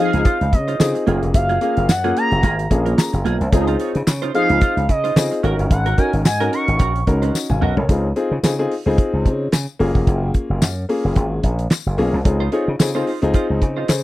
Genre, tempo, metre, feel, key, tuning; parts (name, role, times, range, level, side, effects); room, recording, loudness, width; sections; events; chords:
early-eighties boogie funk; 110 BPM; 4/4; swing 56% on 16ths; Db major; A4 = 440 Hz
expressive portamento lead; melody; 0.0-7.0 s; Eb5 to Db6; -21 LUFS; equal; chorus, slapback echo
mellow synth brass; second line; 0.0-0.2, 3.5-4.6 s; F3 to Ab4; -22 LUFS; equal; chorus, phaser
warm grand piano; accompaniment; 0.0-14.0 s; Bb3 to Bb5; -21 LUFS; left 2 dB
semi-hollow electric guitar; riff; 0.0-7.8, 12.3-13.9 s; Bb3 to Db5; -26 LUFS; right 6 dB; lush chorus
slap bass with an envelope filter; bass; 0.1-14.0 s; F1 to Db3; -20 LUFS; equal
damped 70s drum kit; drums; 0.1-14.0 s; handclaps, hi-hat, kick drum, snare drum, toms; -16 LUFS; equal
tambourine; percussion; 0.8-14.0 s; -28 LUFS; left 11 dB
little or no reverb; dry, close 1970s-style studio recording; -16 LUFS; side -16 dB against mid
0.0-7.9 A section; 7.9-14.0 B section
grand piano fill 2.7-3.5; drum fill 7.3-7.9
0.0 Dbmaj9; 1.1 Gbmaj9; 3.5 Dbmaj9; 5.4 Ab9sus4; 7.9 Dbmaj9; 9.8 Gbmaj9; 12.3 Dbmaj9